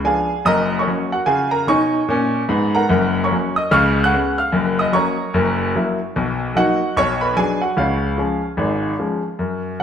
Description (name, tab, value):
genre	jazz, stride piano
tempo	148 BPM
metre	4/4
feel	swing 62% on 8ths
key	unclear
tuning	A4 = 440 Hz
part	clear grand piano	solo	0.0-9.8 s	F#1 to F#6	-16 LUFS	equal	none
room	wet stone room reverb, RT60 1.4 s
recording	band playing live in one room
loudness	-16 LUFS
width	side -8 dB against mid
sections	0.0-9.4 A section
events	none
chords	0.4 F#; 1.3 C#7; 2.9 F#; 3.7 C#7; 4.5 F#; 5.3 F#7; 6.1 Bmaj7; 7.0 Bm; 7.8 C#